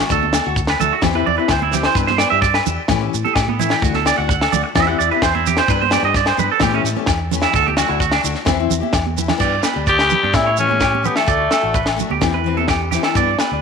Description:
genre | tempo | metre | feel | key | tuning
highlife guitar band | 129 BPM | 4/4 | straight | G major | A4 = 440 Hz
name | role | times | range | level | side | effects
picked steel-string acoustic guitar | accompaniment | 0.0-13.6 s | E3 to G4 | -23 LUFS | left 13 dB | none
clean electric guitar | arpeggios | 0.0-13.6 s | B3 to F#5 | -19 LUFS | right 10 dB | tape echo
agogo bells | percussion | 0.0-13.5 s | none | -25 LUFS | left 11 dB | none
fingered electric bass | bass | 0.1-13.6 s | A1 to A2 | -24 LUFS | equal | none
tight funk drum kit | drums | 0.1-13.5 s | crash cymbal, kick drum, snare drum | -22 LUFS | equal | none
shekere | percussion | 0.1-13.5 s | none | -27 LUFS | right 6 dB | none
congas | percussion | 0.2-13.5 s | none | -26 LUFS | right 13 dB | none
raspy tenor saxophone | melody | 9.9-12.1 s | A3 to G4 | -17 LUFS | left 3 dB | none
room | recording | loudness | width
moderate plate reverb, RT60 1.8 s | 1960s-style stereo with parts hard left and right | -14 LUFS | side -5 dB against mid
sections
0.0-9.4 A section; 9.4-13.6 B section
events
clean electric guitar solo 0.0-9.4; drum fill 9.1-9.4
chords
0.1 D; 1.0 C/E; 2.0 G; 2.9 A7; 3.8 D; 4.8 C/E; 5.7 G; 6.6 A7; 7.5 D; 8.5 C/E; 9.4 G; 10.3 A7; 11.3 D; 12.2 C/E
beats
| 0.11 0.57 1.04 1.50 | 1.97 2.43 2.90 3.36 | 3.83 4.29 4.76 5.22 | 5.69 6.15 6.62 7.08 | 7.55 8.02 8.48 8.95 | 9.41 9.88 10.35 10.82 | 11.29 11.75 12.22 12.69 | 13.16

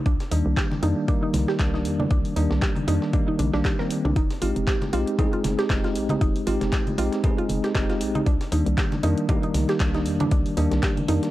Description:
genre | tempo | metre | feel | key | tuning
deep house | 117 BPM | 4/4 | swing 56% on 16ths | unclear | A4 = 440 Hz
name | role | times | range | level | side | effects
mallet-like synth pluck | arpeggios | 0.1-11.1 s | D4 to Bb4 | -30 LUFS | right 2 dB | chorus, phaser, sidechain pumping, tape echo
hollow knocking FM bass | bass | 0.1-11.2 s | F1 to F2 | -25 LUFS | equal | sidechain pumping
breakbeat sampler-style drum kit | drums | 0.1-11.3 s | hi-hat, snare drum | -38 LUFS | equal | sidechain pumping on hats, high-pass filter on hats, high-pass filter on snare
electronic kick drum | drums | 0.1-10.9 s | none | -24 LUFS | equal | none
deep house drum kit | drums | 0.2-11.3 s | handclaps, hi-hat | -34 LUFS | equal | none
bell-like tine electric piano | stabs | 0.3-11.3 s | Eb3 to Ab4 | -25 LUFS | equal | fast stereo tremolo, sidechain pumping, tape echo
congas | percussion | 0.7-11.1 s | none | -30 LUFS | equal | none
room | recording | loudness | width
digital ambience | cassette tape | -21 LUFS | side -15 dB against mid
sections
0.0-11.3 A section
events
filter sweep on synth arpeggio sound 0.0-11.3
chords
0.1 Cm9; 4.2 Fm9; 8.3 Cm9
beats
| 0.06 0.57 1.08 1.60 | 2.11 2.62 3.13 3.65 | 4.16 4.67 5.19 5.70 | 6.21 6.72 7.24 7.75 | 8.26 8.78 9.29 9.80 | 10.31 10.83

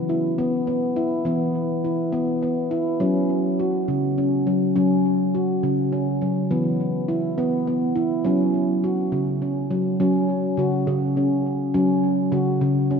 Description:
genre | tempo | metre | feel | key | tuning
world meditative | 69 BPM (dotted quarters) | 6/8 | straight | unclear | A4 = 443 Hz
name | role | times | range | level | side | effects
handpan | solo | 0.0-13.0 s | C#3 to F#4 | -20 LUFS | equal | tape echo
room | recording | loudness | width
wet lush hall reverb, RT60 3.1 s | dreamy mix soaked in reverb, nothing above 10.9 kHz | -20 LUFS | side -6 dB against mid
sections
0.0-10.0 A section; 10.0-13.0 B section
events
none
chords
0.0 E5; 3.0 F#5; 6.5 E5; 8.3 F#5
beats
0.39 | 1.26 2.14 | 3.01 3.89 | 4.76 5.63 | 6.51 7.38 | 8.26 9.13 | 10.00 10.87 | 11.74 12.61

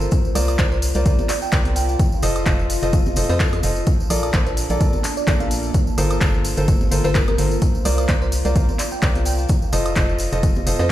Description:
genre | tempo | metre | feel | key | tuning
piano house | 128 BPM | 4/4 | swing 55% on 16ths | unclear | A4 = 436 Hz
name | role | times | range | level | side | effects
clear upright piano | riff | 0.0-10.9 s | F4 to Eb5 | -25 LUFS | equal | sidechain pumping, dub echo
organ-like FM bass | bass | 0.0-10.9 s | F1 to F2 | -22 LUFS | equal | tube saturation, sidechain pumping
punchy analog drum machine | drums | 0.0-10.9 s | handclaps, hi-hat, tambourine, woodblock | -27 LUFS | left 1 dB | none
tambourine and congas | percussion | 0.0-10.9 s | none | -33 LUFS | right 2 dB | none
deep dark ambient pad | texture | 0.0-10.9 s | Bb3 to Bb5 | -29 LUFS | equal | chorus, built-in reverb, sidechain pumping
electronic kick drum | drums | 0.1-10.5 s | none | -19 LUFS | equal | none
bell-like FM electric piano | melody | 0.6-10.9 s | A4 to G5 | -30 LUFS | right 2 dB | chorus, phaser, dub echo
room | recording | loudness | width
little or no reverb | played on a big sound system in a bare room, stone room reverb | -16 LUFS | side -13 dB against mid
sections
0.0-10.9 A section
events
none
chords
0.1 C9sus4; 2.0 F7; 3.9 Bbmaj7; 5.7 Gm11; 7.6 C9sus4; 9.5 F7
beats
| 0.12 0.59 1.06 1.52 | 1.99 2.46 2.93 3.40 | 3.87 4.34 4.81 5.28 | 5.74 6.21 6.68 7.15 | 7.62 8.09 8.56 9.03 | 9.49 9.96 10.43 10.90

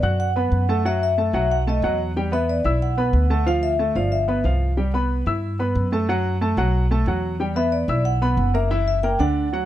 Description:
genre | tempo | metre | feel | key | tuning
Afro-Cuban jazz | 183 BPM | 4/4 | straight | B minor | A4 = 440 Hz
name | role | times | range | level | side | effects
vibraphone with medium mallets | melody | 0.0-4.4, 7.6-9.7 s | D5 to G5 | -24 LUFS | left 2 dB | none
warm upright piano | accompaniment | 0.0-9.7 s | D3 to F#6 | -23 LUFS | right 1 dB | none
upright bass | bass | 0.0-9.7 s | F#1 to G2 | -22 LUFS | equal | none
room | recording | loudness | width
little or no reverb | close, detailed microphones | -19 LUFS | side -12 dB against mid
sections
0.0-9.7 A section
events
none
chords
0.0 B7(no3); 1.5 B7; 2.2 Em9; 3.5 Dmadd9; 4.1 G6; 4.8 Cmaj7#11; 6.1 F#madd11; 6.7 B5; 7.4 Em9; 8.7 F#7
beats
0.19 0.52 | 0.85 1.18 1.50 1.83 | 2.16 2.49 2.81 3.14 | 3.47 3.79 4.12 4.45 | 4.78 5.11 5.43 5.76 | 6.09 6.41 6.74 7.07 | 7.40 7.72 8.05 8.38 | 8.71 9.03 9.36

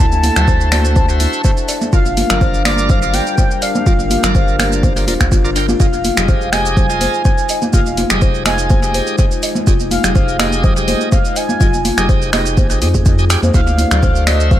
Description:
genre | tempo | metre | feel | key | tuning
afro house | 124 BPM | 4/4 | swing 54% on 16ths | F dorian | A4 = 440 Hz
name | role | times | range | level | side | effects
expressive synth lead | melody | 0.0-14.6 s | D5 to A5 | -21 LUFS | equal | analog chorus, dub echo
dark analog pad | sustained chords | 0.0-14.6 s | G3 to F#5 | -26 LUFS | left 3 dB | lush chorus, sidechain pumping
buzzing kalimba | arpeggios | 0.0-14.6 s | C4 to Eb5 | -22 LUFS | left 3 dB | vintage 12-bit sampler grit, sidechain pumping, dub echo
bright tonewheel organ | stabs | 0.0-14.6 s | F4 to G5 | -24 LUFS | right 2 dB | overdrive, slow rotary speaker, sidechain pumping, dub echo
round analog bass | bass | 0.0-14.6 s | D1 to F2 | -18 LUFS | equal | sidechain pumping
deep house drum kit | drums | 0.1-14.6 s | finger snaps, hi-hat, shaker | -21 LUFS | right 1 dB | dub echo
congas | percussion | 0.1-14.6 s | none | -22 LUFS | right 2 dB | none
electronic kick drum | drums | 0.5-14.6 s | none | -14 LUFS | equal | none
room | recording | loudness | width
light reverb, digital ambience | echo-heavy mix | -11 LUFS | side -12 dB against mid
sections
0.0-14.6 A section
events
none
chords
0.0 D7; 1.9 Gm7; 5.8 Fm7; 13.5 D7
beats
0.48 0.96 1.45 | 1.93 2.41 2.90 3.38 | 3.87 4.35 4.83 5.32 | 5.80 6.29 6.77 7.25 | 7.74 8.22 8.70 9.19 | 9.67 10.16 10.64 11.12 | 11.61 12.09 12.57 13.06 | 13.54 14.03 14.51

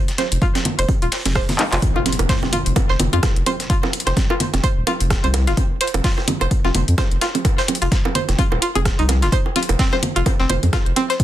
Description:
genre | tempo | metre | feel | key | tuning
minimal techno | 128 BPM | 4/4 | swing 57% on 16ths | unclear | A4 = 440 Hz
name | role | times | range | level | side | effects
booming analog drum machine | drums | 0.1-11.2 s | handclaps, hi-hat, rim click | -24 LUFS | left 2 dB | small room ambience, soft clipping on snare
breakbeat sampler-style drum kit | drums | 0.1-11.2 s | hi-hat, snare drum | -30 LUFS | right 1 dB | high-pass filter on hats, small room ambience, high-pass filter on snare
string-like resonator pluck | riff | 0.2-11.1 s | C4 to C5 | -23 LUFS | equal | chorus, sidechain pumping, tape echo
bongos and congas | percussion | 0.2-11.1 s | none | -24 LUFS | right 4 dB | small room ambience
saturated sub bass | bass | 0.3-10.9 s | Eb1 to F2 | -19 LUFS | equal | tube saturation, sidechain pumping
electronic kick drum | drums | 0.4-11.2 s | none | -19 LUFS | equal | small room ambience
impact | sound effects | 1.8-3.7 s | none | -28 LUFS | equal | none
room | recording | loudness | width
light reverb | dense, heavily limited modern master | -16 LUFS | side -13 dB against mid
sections
0.0-1.8 A section; 1.8-11.2 B section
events
drum fill 1.6; drop 1.8-11.2; impact 1.8-3.7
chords
0.0 N.C.; 1.8 F5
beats
0.42 0.89 1.35 | 1.82 2.29 2.76 3.23 | 3.70 4.17 4.64 5.11 | 5.57 6.04 6.51 6.98 | 7.45 7.92 8.39 8.86 | 9.32 9.79 10.26 10.73 | 11.20

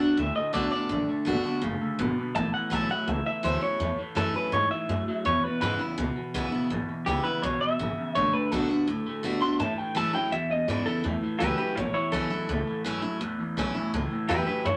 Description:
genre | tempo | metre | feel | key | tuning
rock | 166 BPM | 4/4 | straight | A major | A4 = 440 Hz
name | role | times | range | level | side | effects
electric guitar through a small old amp | melody | 0.0-14.8 s | E4 to C6 | -30 LUFS | equal | none
picked steel-string acoustic guitar | accompaniment | 0.0-14.8 s | E2 to F#4 | -32 LUFS | equal | none
electric guitar through a small old amp | riff | 0.0-14.8 s | E2 to B3 | -35 LUFS | equal | phaser
upright bass | bass | 0.0-14.8 s | F#1 to A2 | -35 LUFS | equal | none
room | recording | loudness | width
moderate studio ambience, RT60 0.5 s | none | -28 LUFS | mono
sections
0.0-11.0 A section; 11.0-14.8 A section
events
none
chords
0.0 D; 2.4 A; 5.3 E; 8.2 D; 9.6 A; 10.3 E; 11.0 A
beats
0.18 0.54 | 0.90 1.27 1.63 1.99 | 2.35 2.72 3.08 3.44 | 3.81 4.17 4.53 4.89 | 5.26 5.62 5.98 6.34 | 6.71 7.07 7.43 7.79 | 8.15 8.52 8.88 9.24 | 9.60 9.96 10.32 10.68 | 11.04 11.41 11.77 12.13 | 12.49 12.85 13.21 13.57 | 13.93 14.29 14.65

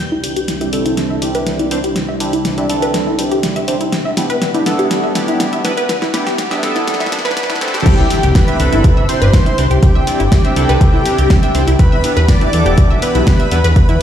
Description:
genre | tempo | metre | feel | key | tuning
progressive house | 122 BPM | 4/4 | straight | unclear | A4 = 438 Hz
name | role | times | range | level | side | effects
airy breathy pad | sustained chords | 0.0-14.0 s | C2 to F#5 | -24 LUFS | left 1 dB | chorus, sidechain pumping
wide unison pluck | arpeggios | 0.1-14.0 s | E4 to E6 | -20 LUFS | left 1 dB | sidechain pumping, ping-pong delay
chorused polysynth | stabs | 0.2-13.6 s | B3 to C5 | -20 LUFS | right 2 dB | cassette tape, sidechain pumping, ping-pong delay
deep house drum kit | drums | 0.2-14.0 s | crash cymbal, hi-hat, snare drum | -21 LUFS | equal | none
wide unison lead | melody | 7.9-14.0 s | G4 to D5 | -20 LUFS | equal | sidechain pumping, dub echo
soft supersaw | second line | 7.9-14.0 s | G5 to D6 | -25 LUFS | equal | sidechain pumping, ping-pong delay
electronic kick drum | drums | 7.9-13.9 s | none | -11 LUFS | equal | none
impact | sound effects | 7.9-9.8 s | none | -22 LUFS | equal | none
dark detuned saw bass | bass | 8.0-14.0 s | E1 to E2 | -14 LUFS | equal | sidechain pumping
room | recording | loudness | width
moderate lush hall reverb, RT60 2.1 s | played on a big sound system in a bare room, stone room reverb, high-pass filter | -12 LUFS | side -10 dB against mid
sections
0.0-7.9 A section; 7.9-14.0 B section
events
build-up 0.0-7.9; drum fill 0.0-7.9; filter sweep on synth pluck 0.0-7.9; filter sweep on analog polysynth 0.0-7.9; filter sweep on analog synth pad 0.0-7.9; filter sweep 0.0-7.9; drop 7.9-14.0; impact 7.9-9.8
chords
0.0 Cadd9; 3.9 Em7; 7.9 Cadd9; 11.8 Em7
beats
0.48 0.97 1.47 | 1.96 2.45 2.94 3.43 | 3.92 4.42 4.91 5.40 | 5.89 6.38 6.88 7.37 | 7.86 8.35 8.84 9.34 | 9.83 10.32 10.81 11.30 | 11.79 12.29 12.78 13.27 | 13.76

